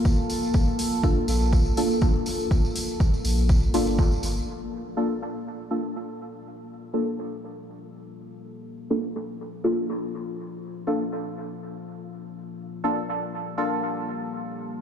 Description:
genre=dub techno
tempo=122 BPM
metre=4/4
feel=swing 54% on 16ths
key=G minor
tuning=A4 = 441 Hz
part: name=deep dark ambient pad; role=sustained chords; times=0.0-14.8 s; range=Bb3 to C5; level=-32 LUFS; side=equal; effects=chorus, built-in reverb, sidechain pumping
part: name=electronic kick drum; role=drums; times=0.1-4.1 s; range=none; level=-22 LUFS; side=equal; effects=none
part: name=tambourine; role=percussion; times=0.1-4.5 s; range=none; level=-36 LUFS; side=right 2 dB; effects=none
part: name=electronic hi-hat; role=drums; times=0.3-4.3 s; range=none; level=-37 LUFS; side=left 5 dB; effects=none
part: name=deep mellow chord stab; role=stabs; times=1.0-14.8 s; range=Bb3 to A4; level=-28 LUFS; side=equal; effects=chorus, phaser, sidechain pumping, dub echo
part: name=warm sub bass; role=bass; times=1.3-4.4 s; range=G1 to Bb1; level=-24 LUFS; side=equal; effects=sidechain pumping
room=light reverb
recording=played on a big sound system in a bare room, large studio reverb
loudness=-23 LUFS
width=side -9 dB against mid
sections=0.0-4.5 A section; 4.5-14.8 B section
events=filter sweep on synth stab 4.5-14.8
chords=0.0 Gm7

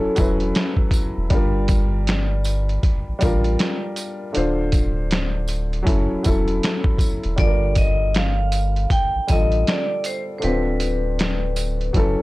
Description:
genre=lo-fi hip hop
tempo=79 BPM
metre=4/4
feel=swing 62% on 16ths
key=G minor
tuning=A4 = 443 Hz
part: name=vibraphone with hard mallets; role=melody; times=0.0-0.5, 7.4-12.2 s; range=A4 to G5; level=-25 LUFS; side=equal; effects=low-pass filter
part: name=dark upright piano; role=accompaniment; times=0.0-12.2 s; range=D3 to C5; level=-24 LUFS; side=left 1 dB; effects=low-pass filter
part: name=soft dub sub bass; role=bass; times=0.0-12.2 s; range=D1 to A1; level=-22 LUFS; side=equal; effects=none
part: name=trip hop sampler-style drum kit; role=drums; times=0.2-12.2 s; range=finger snaps, hi-hat, kick drum, snare drum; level=-21 LUFS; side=equal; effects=vintage 12-bit sampler grit
part: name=tambourine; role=percussion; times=0.2-11.8 s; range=none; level=-36 LUFS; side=right 2 dB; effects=none
room=little or no reverb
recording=dry, gritty hardware recording, transformer saturation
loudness=-18 LUFS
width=side -19 dB against mid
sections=0.0-12.2 A section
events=none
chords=0.0 F#m7; 1.3 Gm7; 4.3 Dm7; 5.9 F#m7; 7.4 Gm7; 10.4 Dm7

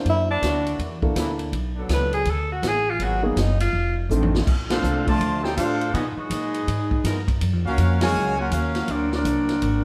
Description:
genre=jazz, big band swing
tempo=163 BPM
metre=4/4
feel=swing 64% on 8ths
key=unclear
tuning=A4 = 439 Hz
part: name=dark grand piano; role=accompaniment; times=0.0-4.3 s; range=A3 to B#4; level=-30 LUFS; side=equal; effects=none
part: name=clear tenor saxophone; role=melody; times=0.1-3.9 s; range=A#3 to B4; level=-26 LUFS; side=equal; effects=none
part: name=upright bass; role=bass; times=0.1-9.8 s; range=F1 to Cb3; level=-27 LUFS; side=equal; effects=none
part: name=swinging big-band drum kit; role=drums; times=0.1-9.7 s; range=crash cymbal, hi-hat, kick drum, ride cymbal, snare drum, toms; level=-30 LUFS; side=equal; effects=none
part: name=brilliant trombone section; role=sustained chords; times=0.4-8.5 s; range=Bb2 to Bb4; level=-36 LUFS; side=equal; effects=none
part: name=clear trumpet section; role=melody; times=4.7-9.8 s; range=Cb4 to A5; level=-29 LUFS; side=equal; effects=none
part: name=clear trombone section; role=second line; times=4.7-9.8 s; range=Db3 to G4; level=-28 LUFS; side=equal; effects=none
room=wet echo chamber reverb, RT60 1.2 s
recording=heard from further back in the room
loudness=-23 LUFS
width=mono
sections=0.0-4.5 A section; 4.5-9.8 B section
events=tenor saxophone solo 0.0-4.5; drum fill 4.1-4.5; band accent 4.7, 8.0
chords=0.1 F#7alt; 1.5 Bm7; 3.0 G#m9; 3.7 F6; 4.5 Bbmaj9; 5.9 Abm7; 6.7 G7b9b13; 7.4 Gbmaj7; 8.9 Daug7

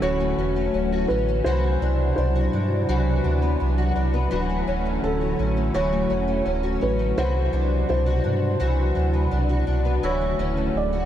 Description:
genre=dream pop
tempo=84 BPM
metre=4/4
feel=straight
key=D major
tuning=A4 = 440 Hz
part: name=felt-muted upright piano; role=melody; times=0.0-11.1 s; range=A4 to D5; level=-28 LUFS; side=equal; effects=digital delay
part: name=hollow soft pad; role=sustained chords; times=0.0-11.1 s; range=B2 to E4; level=-28 LUFS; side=right 1 dB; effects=chorus
part: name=fingerpicked twelve-string acoustic guitar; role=arpeggios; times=0.0-11.1 s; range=E3 to F#4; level=-27 LUFS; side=left 4 dB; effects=ensemble chorus, digital delay
part: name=sub bass with octave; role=bass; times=0.0-11.1 s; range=D1 to G2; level=-24 LUFS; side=right 1 dB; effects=none
part: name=kora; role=texture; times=10.0-11.1 s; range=E4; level=-35 LUFS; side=right 5 dB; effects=digital delay
room=moderate huge ambient reverb, RT60 5.1 s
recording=dark, warm production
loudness=-20 LUFS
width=side -11 dB against mid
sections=0.0-11.1 A section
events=none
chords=0.0 Dmaj9; 1.5 Cmaj9#11; 4.3 Dmaj9; 7.2 Cmaj9#11; 10.0 Dmaj9

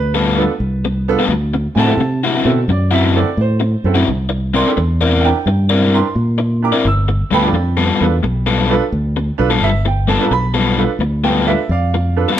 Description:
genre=electric blues shuffle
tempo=87 BPM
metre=4/4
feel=swing 67% on 8ths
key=G mixolydian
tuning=A4 = 440 Hz
part: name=clear upright piano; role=accompaniment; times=0.0-12.4 s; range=B3 to E6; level=-20 LUFS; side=right 6 dB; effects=none
part: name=fingered electric bass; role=bass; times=0.0-12.2 s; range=G1 to C3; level=-16 LUFS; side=equal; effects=none
part: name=overdriven semi-hollow guitar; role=riff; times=0.1-12.4 s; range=D3 to D5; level=-17 LUFS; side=left 4 dB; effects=none
room=moderate stone room reverb, RT60 0.9 s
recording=band playing live in one room, faint mains hum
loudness=-13 LUFS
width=side -11 dB against mid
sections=0.0-12.4 A section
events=none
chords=0.0 G9; 1.3 D9; 4.1 C9; 6.8 G9

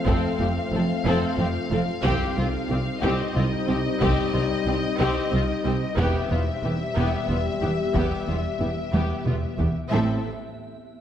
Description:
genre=cinematic, hybrid orchestral and electronic film score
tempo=61 BPM (dotted quarters)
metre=6/8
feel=straight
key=unclear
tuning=A4 = 438 Hz
part: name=warm symphonic violin section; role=melody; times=0.0-10.3 s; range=Eb5 to F5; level=-32 LUFS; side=left 5 dB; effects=none
part: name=mellow French horn section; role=sustained chords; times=0.0-10.2 s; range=G3 to G4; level=-30 LUFS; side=left 5 dB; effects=none
part: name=swarming drone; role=sustained chords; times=0.0-10.3 s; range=B3 to E5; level=-34 LUFS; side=equal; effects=built-in reverb
part: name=dark symphonic violin section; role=second line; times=0.1-10.3 s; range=F4 to A4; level=-32 LUFS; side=left 4 dB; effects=none
part: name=rich symphonic viola section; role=accompaniment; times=0.1-10.3 s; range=B3 to C4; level=-33 LUFS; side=right 1 dB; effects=none
part: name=plucky analog bass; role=riff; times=0.1-9.8 s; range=C2 to F3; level=-28 LUFS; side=right 1 dB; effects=none
part: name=rich symphonic cello section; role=bass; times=0.1-10.3 s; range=C2 to A2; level=-30 LUFS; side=right 2 dB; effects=none
part: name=rich symphonic double bass section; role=bass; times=0.1-10.3 s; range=E1 to C2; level=-30 LUFS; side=right 2 dB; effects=none
part: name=taiko ensemble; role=drums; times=0.1-9.9 s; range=none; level=-29 LUFS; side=equal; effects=none
room=moderate scoring stage reverb, RT60 1.7 s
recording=none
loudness=-22 LUFS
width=side -10 dB against mid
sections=0.0-9.9 A section; 9.9-11.0 B section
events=drum fill 8.9-9.9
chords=0.0 F; 2.0 Cm; 6.0 Em; 9.9 Am

